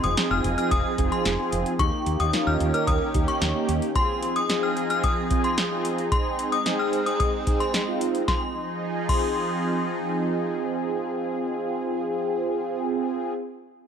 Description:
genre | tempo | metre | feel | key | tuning
synth-pop | 111 BPM | 4/4 | straight | F minor | A4 = 436 Hz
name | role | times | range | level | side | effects
synth chime | second line | 0.0-9.9 s | C6 to F6 | -28 LUFS | left 3 dB | ensemble chorus, tremolo, slapback echo
mellow synth brass | accompaniment | 0.0-13.3 s | Bb3 to Bb4 | -27 LUFS | right 2 dB | chorus, phaser
lush unison pad | sustained chords | 0.0-12.5 s | Eb3 to Ab4 | -30 LUFS | right 1 dB | chorus, phaser
woody fretless electric bass | bass | 0.0-3.8 s | F1 to Eb2 | -27 LUFS | equal | none
electro analog drum machine | drums | 0.0-9.2 s | crash cymbal, hi-hat, kick drum, snare drum | -27 LUFS | equal | none
room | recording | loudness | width
moderate plate reverb, RT60 2.1 s | none | -22 LUFS | side -7 dB against mid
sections
0.0-8.3 A section; 8.3-12.6 B section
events
none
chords
0.0 Fm7; 1.8 Eb7; 4.0 Fm7; 6.1 Ab; 8.3 Fm7

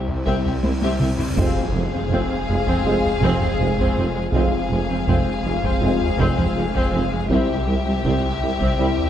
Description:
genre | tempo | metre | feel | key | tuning
cinematic, hybrid orchestral and electronic film score | 81 BPM | 4/4 | straight | F harmonic minor | A4 = 439 Hz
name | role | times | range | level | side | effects
dark trombone section | sustained chords | 0.0-9.1 s | C3 to Ab3 | -30 LUFS | right 3 dB | none
deep dark ambient pad | sustained chords | 0.0-9.1 s | G3 to C5 | -29 LUFS | right 1 dB | chorus, built-in reverb
mellow French horn section | sustained chords | 0.0-9.1 s | C4 to F4 | -29 LUFS | left 5 dB | none
snarling distorted saw bass | bass | 0.0-9.1 s | F1 to C2 | -29 LUFS | equal | distortion
cymbal swell and impact | sound effects | 0.4-4.3 s | none | -31 LUFS | equal | none
taiko ensemble | drums | 0.1-9.1 s | none | -26 LUFS | equal | none
warm symphonic violin section | melody | 0.3-9.1 s | C5 to F5 | -30 LUFS | left 5 dB | none
warm symphonic violin section | second line | 0.3-9.1 s | E4 to Ab4 | -28 LUFS | left 4 dB | none
rich symphonic viola section | accompaniment | 0.3-8.9 s | G3 to C4 | -28 LUFS | right 1 dB | none
rich studio double bass section | bass | 0.3-8.9 s | F1 to C2 | -27 LUFS | right 3 dB | none
warm symphonic cello section | bass | 0.3-8.9 s | C2 to F2 | -27 LUFS | right 2 dB | none
warm tuba | bass | 0.3-8.9 s | F1 to C2 | -28 LUFS | right 2 dB | none
room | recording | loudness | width
moderate concert hall reverb, RT60 2.4 s | dark, warm production | -18 LUFS | side -10 dB against mid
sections
0.0-1.4 A section; 1.4-9.1 B section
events
cymbal swell 0.4-1.4; drum fill 0.6-1.4; impact 1.4-4.3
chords
0.0 C; 1.4 Fm; 7.3 C

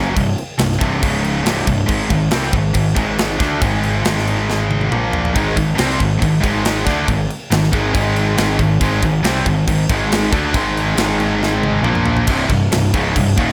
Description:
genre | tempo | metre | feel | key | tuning
heavy metal | 139 BPM | 4/4 | straight | unclear | A4 = 440 Hz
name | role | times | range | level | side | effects
scooped high-gain guitar | riff | 0.0-13.5 s | C2 to D4 | -20 LUFS | equal | distortion
fuzz picked electric bass | bass | 0.0-13.5 s | C1 to D2 | -23 LUFS | equal | overdrive
tight metal drum kit | drums | 0.2-13.5 s | crash cymbal, kick drum, snare drum, toms | -23 LUFS | equal | none
distorted electric guitar | riff | 5.3-13.5 s | C2 to D4 | -24 LUFS | equal | distortion
room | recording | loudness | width
light reverb | none | -17 LUFS | mono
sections
0.0-12.3 A section; 12.3-13.5 B section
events
drum fill 4.5-5.3, 11.4-12.3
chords
0.0 C5; 1.0 Db5; 1.5 C5; 1.9 Ab5; 4.9 Bb5; 5.3 Ab5; 11.8 Bb5; 12.3 Cm

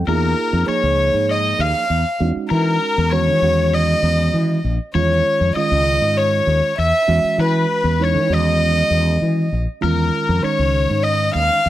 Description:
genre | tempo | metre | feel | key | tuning
jazz | 98 BPM | 4/4 | straight | unclear | A4 = 436 Hz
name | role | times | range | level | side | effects
mellow reed electric piano | accompaniment | 0.0-11.6 s | D#3 to G#4 | -24 LUFS | right 5 dB | none
fretless electric bass | bass | 0.0-11.7 s | A#1 to E3 | -18 LUFS | left 1 dB | wide subtle chorus
warm violin | melody | 0.1-11.7 s | A#4 to E#5 | -19 LUFS | equal | slapback echo
cranked stack guitar | second line | 0.1-11.7 s | A#4 to E#5 | -25 LUFS | left 7 dB | overdrive, spring reverb
room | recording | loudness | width
little or no reverb | dry, close 1970s-style studio recording | -15 LUFS | side -13 dB against mid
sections
0.1-11.7 A section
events
none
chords
0.1 A#m7; 2.2 E69; 3.4 D#m7/E; 4.9 C#add9; 7.1 E69; 8.3 D#m7/E; 9.8 A#m7

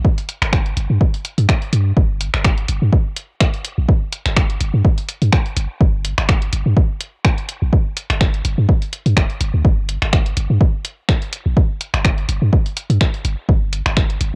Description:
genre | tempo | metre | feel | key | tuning
minimal techno | 125 BPM | 4/4 | swing 55% on 16ths | G minor | A4 = 441 Hz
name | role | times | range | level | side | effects
punchy sub bass | bass | 0.0-14.3 s | F1 to G2 | -20 LUFS | equal | sidechain pumping
electronic kick drum | drums | 0.0-14.1 s | none | -17 LUFS | equal | cassette tape
punchy analog drum machine | drums | 0.2-14.3 s | finger snaps, hi-hat | -24 LUFS | equal | cassette tape
room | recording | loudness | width
little or no reverb | home recording on cassette | -18 LUFS | mono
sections
0.0-2.0 A section; 2.0-14.4 B section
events
drop 2.0-14.4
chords
none

